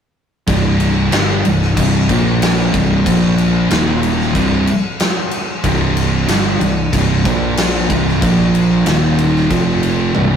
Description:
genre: stoner and doom metal.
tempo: 93 BPM.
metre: 4/4.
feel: straight.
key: C minor.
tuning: A4 = 441 Hz.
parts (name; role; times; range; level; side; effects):
fuzz guitar; riff; 0.5-10.4 s; C2 to Bb3; -21 LUFS; left 1 dB; distortion.
thick fuzz guitar; riff; 0.5-10.4 s; C2 to Bb3; -20 LUFS; left 6 dB; distortion.
thick fuzz guitar; riff; 0.5-10.4 s; C2 to Bb3; -17 LUFS; right 5 dB; distortion.
growling picked electric bass; bass; 0.5-10.4 s; C1 to Bb1; -18 LUFS; equal; overdrive, tube saturation.
big rock drum kit; drums; 0.5-10.3 s; crash cymbal, kick drum, snare drum, toms; -18 LUFS; equal; none.
room: moderate stone room reverb, RT60 1.3 s.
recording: rough rehearsal-room recording, warm saturation.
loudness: -12 LUFS.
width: side -8 dB against mid.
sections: 0.5-10.4 A section.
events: drum fill 10.1.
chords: 0.5 C5; 2.1 Bb5; 2.7 C5; 3.1 Bb5; 3.7 Eb5; 4.4 C5; 7.3 Bb5; 7.9 C5; 8.2 Bb5; 8.9 Eb5; 9.5 F5.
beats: | 0.48 1.13 1.77 2.42 | 3.06 3.71 4.35 5.00 | 5.64 6.29 6.93 7.57 | 8.22 8.86 9.50 10.15.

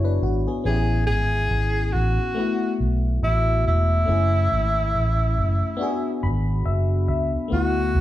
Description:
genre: lovers rock reggae.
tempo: 70 BPM.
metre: 4/4.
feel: swing 56% on 16ths.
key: unclear.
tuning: A4 = 440 Hz.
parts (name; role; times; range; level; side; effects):
FM electric piano; accompaniment; 0.0-8.0 s; A3 to B5; -26 LUFS; left 4 dB; chorus.
vintage muted fingered electric bass; bass; 0.0-8.0 s; E1 to D2; -21 LUFS; right 1 dB; none.
breathy tenor saxophone; melody; 0.7-8.0 s; E4 to G#4; -24 LUFS; equal; none.
room: wet large studio reverb, RT60 1.1 s.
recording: band playing live in one room.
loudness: -20 LUFS.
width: side -14 dB against mid.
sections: 0.0-7.5 A section.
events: FM electric piano fill 5.8-7.5.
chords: 0.0 E13/F#; 0.7 Amaj7; 2.4 Esus24; 4.1 F#m9; 5.8 E13.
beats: | 0.65 1.51 2.37 3.23 | 4.09 4.94 5.80 6.66 | 7.52.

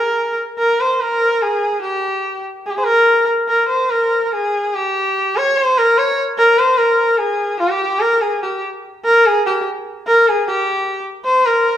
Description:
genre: indian classical.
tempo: 146 BPM.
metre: 7/4.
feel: straight.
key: unclear.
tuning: A4 = 439 Hz.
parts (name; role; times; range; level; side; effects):
rich sarangi; solo; 0.0-11.8 s; G4 to Db5; -14 LUFS; equal; none.
room: moderate recital hall reverb, RT60 1.4 s.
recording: recorded in a church or concert hall.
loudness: -14 LUFS.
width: side -10 dB against mid.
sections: 0.0-10.5 A section; 10.5-11.8 B section.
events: speeding up 0.0-11.8.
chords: none.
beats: 0.14 0.57 0.99 1.41 | 1.83 2.25 2.67 3.08 3.50 3.91 4.33 | 4.74 5.16 5.57 5.98 6.39 6.80 7.21 | 7.62 8.03 8.43 8.84 9.24 9.65 10.05 | 10.45 10.85 11.25 11.65.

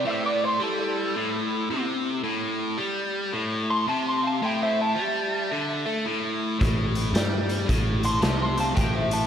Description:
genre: blues rock power trio and southern rock.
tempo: 110 BPM.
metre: 4/4.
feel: swing 62% on 8ths.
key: A minor.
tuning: A4 = 440 Hz.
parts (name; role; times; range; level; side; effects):
lightly driven lead guitar; melody; 0.0-9.3 s; A4 to C6; -27 LUFS; equal; wah, slapback echo.
dark smooth lead guitar; second line; 0.0-9.3 s; E4 to A5; -35 LUFS; right 4 dB; overdrive, slapback echo, tape echo.
biting overdriven guitar; riff; 0.0-9.3 s; A2 to A3; -26 LUFS; left 1 dB; slapback echo.
vintage muted picked electric bass; bass; 6.6-9.3 s; A1 to G2; -27 LUFS; equal; none.
raw garage drum kit; drums; 6.6-9.2 s; hi-hat, kick drum, snare drum; -25 LUFS; equal; none.
room: moderate lush hall reverb, RT60 2.6 s.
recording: big arena sound.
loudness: -23 LUFS.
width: side -9 dB against mid.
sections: 0.0-9.3 A section.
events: none.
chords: 0.0 Am.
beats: | 0.07 0.62 1.17 1.71 | 2.25 2.80 3.34 3.89 | 4.43 4.97 5.52 6.06 | 6.60 7.15 7.69 8.23 | 8.77.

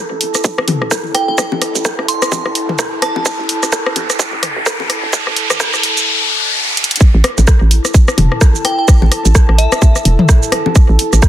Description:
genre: minimal techno.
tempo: 128 BPM.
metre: 4/4.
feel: swing 59% on 16ths.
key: unclear.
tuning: A4 = 440 Hz.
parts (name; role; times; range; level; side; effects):
riser; sound effects; 1.5-7.0 s; none; -19 LUFS; left 1 dB; none.
warbly tape-like pad; texture; 0.0-11.3 s; E4 to A5; -23 LUFS; equal; chorus, built-in reverb, sidechain pumping.
hollow knocking FM bass; bass; 0.1-11.2 s; E1 to A1; -12 LUFS; equal; sidechain pumping, high-pass filter.
garage drum kit; drums; 0.2-11.3 s; hi-hat, rim click, shaker; -18 LUFS; right 2 dB; soft clipping on snare.
garage drum kit; percussion; 0.3-11.2 s; bongos, rim click, toms; -18 LUFS; left 3 dB; soft clipping on snare, tape echo.
electronic kick drum; drums; 0.4-11.3 s; none; -9 LUFS; equal; overdrive, high-pass filter on kick.
glassy synth bell; melody; 1.1-3.7, 8.6-10.2 s; E5 to C6; -21 LUFS; right 2 dB; chorus, tape echo.
room: light reverb.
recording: dense, heavily limited modern master, high-pass filter.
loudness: -11 LUFS.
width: side -12 dB against mid.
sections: 0.0-7.0 A section; 7.0-11.3 B section.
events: build-up 0.0-7.0; filter sweep 0.0-7.0; riser 1.5-7.0; drum fill 6.8; drop 7.0-11.3.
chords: 0.0 A5.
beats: 0.44 0.91 | 1.38 1.85 2.32 2.79 | 3.26 3.73 4.19 4.66 | 5.13 5.60 6.07 6.54 | 7.01 7.47 7.94 8.41 | 8.88 9.35 9.82 10.29 | 10.76 11.22.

